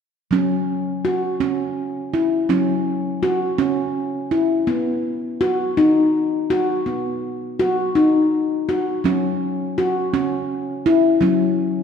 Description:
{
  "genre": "world meditative",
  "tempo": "55 BPM (dotted quarters)",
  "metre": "6/8",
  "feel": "straight",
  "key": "unclear",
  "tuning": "A4 = 440 Hz",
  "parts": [
    { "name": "handpan", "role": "arpeggios", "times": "0.3-11.8 s", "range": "F#3 to F#4", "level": "-18 LUFS", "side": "left 1 dB", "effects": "none" }
  ],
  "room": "wet echo chamber reverb, RT60 2.0 s",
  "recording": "none",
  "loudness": "-18 LUFS",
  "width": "side -7 dB against mid",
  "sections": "0.3-11.8 A section",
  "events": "none",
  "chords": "0.3 F#5; 4.7 B; 9.0 F#5"
}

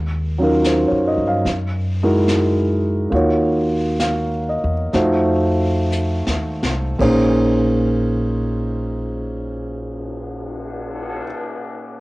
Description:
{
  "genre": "jazz ballad",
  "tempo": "54-75 BPM",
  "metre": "4/4",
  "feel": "swing 69% on 8ths",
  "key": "Bb minor",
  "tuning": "A4 = 440 Hz",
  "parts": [
    { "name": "upright bass", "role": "bass", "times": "0.0-11.2 s", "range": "Bb1 to G2", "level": "-22 LUFS", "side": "equal", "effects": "none" },
    { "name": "warm concert grand piano", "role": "accompaniment", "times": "0.4-12.0 s", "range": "Bb2 to F5", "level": "-18 LUFS", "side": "right 1 dB", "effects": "cassette tape, plate reverb" },
    { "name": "jazz brush drum kit", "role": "drums", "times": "0.6-11.2 s", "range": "brushed snare drum, cymbal swell, hi-hat, kick drum, ride cymbal, snare drum", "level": "-29 LUFS", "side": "left 1 dB", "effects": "cassette tape" }
  ],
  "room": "light reverb",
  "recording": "home recording on cassette",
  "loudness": "-16 LUFS",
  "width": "side -20 dB against mid",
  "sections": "0.0-7.0 A section; 7.0-11.4 B section",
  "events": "slowing down 0.0-7.0; drum fill 5.9-7.0",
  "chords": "0.0 Ebm9; 1.4 Gb13; 3.1 Ebm9; 4.9 F7b9; 7.0 Bbm11"
}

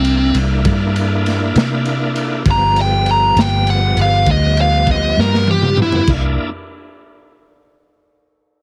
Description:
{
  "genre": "slow blues",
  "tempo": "66 BPM (dotted quarters)",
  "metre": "12/8",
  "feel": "straight",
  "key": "C mixolydian",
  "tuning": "A4 = 442 Hz",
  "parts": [
    { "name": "dark smooth lead guitar", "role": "melody", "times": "0.0-6.1 s", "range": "C4 to Bb5", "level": "-18 LUFS", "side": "equal", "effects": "overdrive" },
    { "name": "bright tonewheel organ", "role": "sustained chords", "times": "0.0-6.5 s", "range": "F3 to E4", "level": "-24 LUFS", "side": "equal", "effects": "slow rotary speaker, chorus vibrato" },
    { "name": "vintage muted fingered electric bass", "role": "bass", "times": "0.0-6.4 s", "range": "G1 to C3", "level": "-19 LUFS", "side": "equal", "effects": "none" },
    { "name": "crunchy breakbeat drum kit", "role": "drums", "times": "0.0-6.2 s", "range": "crash cymbal, kick drum, ride cymbal, snare drum, toms", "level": "-22 LUFS", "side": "equal", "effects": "none" }
  ],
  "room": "light reverb",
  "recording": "heavily compressed radio sound, multiband compression",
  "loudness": "-15 LUFS",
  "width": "mono",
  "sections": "0.0-6.1 A section; 6.1-8.6 B section",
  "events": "lead electric guitar solo 0.0-6.1; drum fill 5.2-6.1",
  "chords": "0.0 C9; 2.5 G7; 6.1 C9"
}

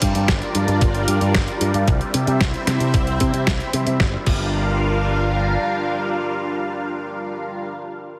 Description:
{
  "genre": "italo disco",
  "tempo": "113 BPM",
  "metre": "4/4",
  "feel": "straight",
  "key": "G dorian",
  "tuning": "A4 = 440 Hz",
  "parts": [
    { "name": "lush unison pad", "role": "sustained chords", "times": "0.0-7.7 s", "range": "G3 to F5", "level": "-25 LUFS", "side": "equal", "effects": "chorus, phaser" },
    { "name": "picked electric bass with an envelope filter", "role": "bass", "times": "0.0-5.6 s", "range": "G1 to C3", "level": "-24 LUFS", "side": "equal", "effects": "none" },
    { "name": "detuned 8-bit digital drum machine", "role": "drums", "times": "0.0-4.4 s", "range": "crash cymbal, hi-hat, snare drum", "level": "-27 LUFS", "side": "equal", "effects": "none" },
    { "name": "electronic kick drum", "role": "drums", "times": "0.0-4.4 s", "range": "none", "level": "-23 LUFS", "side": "equal", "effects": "none" }
  ],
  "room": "moderate plate reverb, RT60 1.9 s",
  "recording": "heavily compressed radio sound, multiband compression",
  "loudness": "-20 LUFS",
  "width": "mono",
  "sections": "0.0-4.0 A section; 4.0-8.2 B section",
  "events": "none",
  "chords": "0.0 Gm7; 1.9 C; 4.0 Gm7"
}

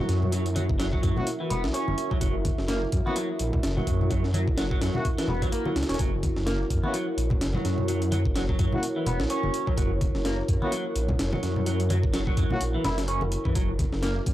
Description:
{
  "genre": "breakbeat, breaks",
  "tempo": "127 BPM",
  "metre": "4/4",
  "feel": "swing 57% on 16ths",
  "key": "unclear",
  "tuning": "A4 = 438 Hz",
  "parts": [
    { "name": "dark analog pad", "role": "sustained chords", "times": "0.0-14.3 s", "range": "E4 to E5", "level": "-32 LUFS", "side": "equal", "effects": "chorus, sidechain pumping" },
    { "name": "electric guitar through a small old amp", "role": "riff", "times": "0.0-14.1 s", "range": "E3 to E4", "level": "-32 LUFS", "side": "right 1 dB", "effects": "overdrive, phaser, tape echo" },
    { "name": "detuned saw bass", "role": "bass", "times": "0.1-14.3 s", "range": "E1 to F#2", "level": "-28 LUFS", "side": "equal", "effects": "none" },
    { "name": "breakbeat sampler-style drum kit", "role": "drums", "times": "0.1-14.3 s", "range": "hi-hat, kick drum, snare drum", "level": "-28 LUFS", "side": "equal", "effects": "none" },
    { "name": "congas and bongos", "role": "percussion", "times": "0.2-13.9 s", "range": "none", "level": "-32 LUFS", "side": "left 1 dB", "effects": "none" },
    { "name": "mellow brass ensemble", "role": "stabs", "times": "1.2-12.6 s", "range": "A#3 to F#4", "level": "-34 LUFS", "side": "left 1 dB", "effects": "tape echo" }
  ],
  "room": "light reverb",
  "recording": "dry, gritty hardware recording, transformer saturation",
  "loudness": "-24 LUFS",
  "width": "side -14 dB against mid",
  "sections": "0.0-14.3 A section",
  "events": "none",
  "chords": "0.0 F#7"
}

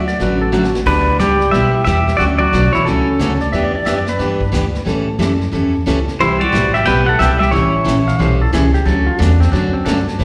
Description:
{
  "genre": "country, western swing",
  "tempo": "180 BPM",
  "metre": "4/4",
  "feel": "swing 61% on 8ths",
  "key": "D major",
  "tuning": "A4 = 441 Hz",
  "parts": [
    { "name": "pedal steel guitar", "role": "melody", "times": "0.0-3.4, 6.2-8.2 s", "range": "C#4 to G5", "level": "-18 LUFS", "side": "equal", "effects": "slapback echo" },
    { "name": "clean lap steel guitar", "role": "second line", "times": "0.0-0.8, 3.4-5.1, 8.1-10.1 s", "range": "C4 to F5", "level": "-24 LUFS", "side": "equal", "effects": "slapback echo" },
    { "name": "vintage hollow-body jazz guitar", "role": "second line", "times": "0.0-3.4, 6.2-8.2 s", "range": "C#3 to B3", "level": "-23 LUFS", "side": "equal", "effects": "none" },
    { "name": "upright bass", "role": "bass", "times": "0.0-10.2 s", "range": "A1 to A2", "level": "-20 LUFS", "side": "equal", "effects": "none" },
    { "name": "vintage brush drum kit", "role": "drums", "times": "0.1-10.2 s", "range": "brushed snare drum, crash cymbal, hi-hat, kick drum, snare drum", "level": "-29 LUFS", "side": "equal", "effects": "slapback echo" },
    { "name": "picked steel-string acoustic guitar", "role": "accompaniment", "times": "0.2-10.2 s", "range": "C3 to A4", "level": "-21 LUFS", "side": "equal", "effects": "slapback echo" }
  ],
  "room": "light reverb",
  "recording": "live gig heard through the venue's PA, recital hall reverb, faint mains hum",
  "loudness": "-15 LUFS",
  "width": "mono",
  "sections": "0.9-10.2 A section",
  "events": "drum fill 0.5-0.9",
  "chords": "0.0 Dmaj7; 0.9 G6; 2.2 Dmaj7; 3.5 Em7; 4.9 A7; 6.2 Cmaj7; 7.5 A7; 8.9 Dmaj7"
}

